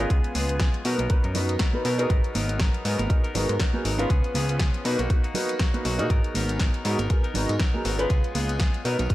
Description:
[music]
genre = filtered disco house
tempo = 120 BPM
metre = 4/4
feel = swing 57% on 16ths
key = G# dorian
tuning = A4 = 440 Hz
[part]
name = warm concert grand piano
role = accompaniment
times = 0.0-9.1 s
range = B3 to B4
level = -29 LUFS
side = equal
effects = phaser, sidechain pumping, low-pass filter
[part]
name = direct-recorded clean electric guitar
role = riff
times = 0.0-9.1 s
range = E#3 to A#4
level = -33 LUFS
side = left 3 dB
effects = sidechain pumping, low-pass filter
[part]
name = fat analog bass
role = bass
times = 0.0-9.1 s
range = G#1 to B2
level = -27 LUFS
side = equal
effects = sidechain pumping, low-pass filter
[part]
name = electronic kick drum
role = drums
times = 0.1-9.1 s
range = none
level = -22 LUFS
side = equal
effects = none
[part]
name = house drum kit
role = drums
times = 0.1-9.1 s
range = hi-hat, snare drum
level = -32 LUFS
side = left 1 dB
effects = none
[part]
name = tambourine and congas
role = percussion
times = 0.1-9.1 s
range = none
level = -35 LUFS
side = right 3 dB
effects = sidechain pumping on perc, low-pass filter on perc
[sound]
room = little or no reverb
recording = none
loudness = -22 LUFS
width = side -16 dB against mid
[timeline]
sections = 0.0-9.1 A section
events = none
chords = 0.1 C#7; 0.9 Bmaj7; 2.1 G#m9; 4.1 C#7; 4.9 Bmaj7; 6.1 G#m9; 8.1 C#7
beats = | 0.10 0.60 1.10 1.60 | 2.10 2.60 3.10 3.60 | 4.10 4.60 5.10 5.60 | 6.10 6.60 7.10 7.60 | 8.10 8.60 9.10

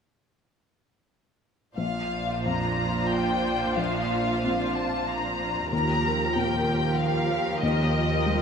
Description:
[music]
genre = cinematic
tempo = 94 BPM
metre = 3/4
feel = rubato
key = Bb major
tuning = A4 = 440 Hz
[part]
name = muted studio violin section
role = melody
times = 1.8-8.4 s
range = Eb5 to Bb5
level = -28 LUFS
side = left 3 dB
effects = none
[part]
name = muted studio violin section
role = second line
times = 1.8-8.4 s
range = F4 to C5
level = -31 LUFS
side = left 1 dB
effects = none
[part]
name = muted studio viola section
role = accompaniment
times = 1.8-8.4 s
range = F3 to F4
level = -32 LUFS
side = right 2 dB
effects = none
[part]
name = warm baby grand piano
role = accompaniment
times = 1.8-8.4 s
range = Bb1 to C4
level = -30 LUFS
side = left 2 dB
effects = none
[part]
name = muted studio cello section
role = bass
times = 1.8-8.4 s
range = Eb2 to Bb2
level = -32 LUFS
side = right 3 dB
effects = none
[part]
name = muted studio double bass section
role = bass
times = 1.8-8.4 s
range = Bb1 to Eb2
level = -34 LUFS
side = right 4 dB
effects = none
[sound]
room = wet scoring stage reverb, RT60 1.7 s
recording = none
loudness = -23 LUFS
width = side -6 dB against mid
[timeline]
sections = 1.8-8.4 A section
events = none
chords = 1.8 Bbadd9; 5.7 Ebadd9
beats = | 1.76 2.46 3.12 | 3.78 4.44 5.09 | 5.72 6.36 6.99 | 7.62 8.25

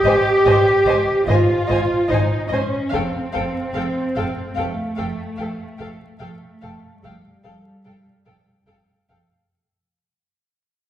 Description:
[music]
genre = cinematic, suspense film score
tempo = 73 BPM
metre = 4/4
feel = straight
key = unclear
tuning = A4 = 440 Hz
[part]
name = muted studio violin section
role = second line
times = 0.0-9.2 s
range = Eb5 to F5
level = -28 LUFS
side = left 2 dB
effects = none
[part]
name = muted studio cello section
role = bass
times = 0.0-8.7 s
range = G3 to G4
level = -19 LUFS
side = right 1 dB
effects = none
[part]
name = muted studio double bass section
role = bass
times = 0.0-9.2 s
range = F1 to Ab1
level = -24 LUFS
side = equal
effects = none
[part]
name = small celesta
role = texture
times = 0.0-9.5 s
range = A4 to Eb6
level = -33 LUFS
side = right 2 dB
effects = none
[part]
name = muted studio violin section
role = melody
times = 0.1-9.2 s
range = G5 to Ab5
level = -33 LUFS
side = left 2 dB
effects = none
[part]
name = muted studio viola section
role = accompaniment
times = 0.1-9.2 s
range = A4 to C5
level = -27 LUFS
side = equal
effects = none
[sound]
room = wet recital hall reverb, RT60 1.5 s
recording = heard from further back in the room, vinyl crackle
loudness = -17 LUFS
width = side -11 dB against mid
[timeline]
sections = 0.0-9.5 A section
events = fade-out 0.0-9.5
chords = 0.0 Ab; 2.9 Fadd9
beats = 0.46 1.28 2.10 | 2.92 3.74 4.57 5.39 | 6.21 7.03 7.85 8.68

